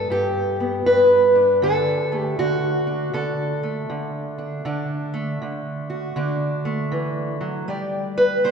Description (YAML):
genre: acoustic country blues, solo or duo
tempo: 79 BPM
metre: 4/4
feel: swing 64% on 8ths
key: D major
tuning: A4 = 439 Hz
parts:
  - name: fingerpicked steel-string acoustic guitar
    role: solo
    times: 0.0-8.5 s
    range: G2 to D5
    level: -19 LUFS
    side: equal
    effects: none
room: wet church reverb, RT60 3.2 s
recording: recorded in a church or concert hall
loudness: -19 LUFS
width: side -6 dB against mid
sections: 0.0-8.5 A section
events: none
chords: 0.0 G; 1.6 D; 7.7 G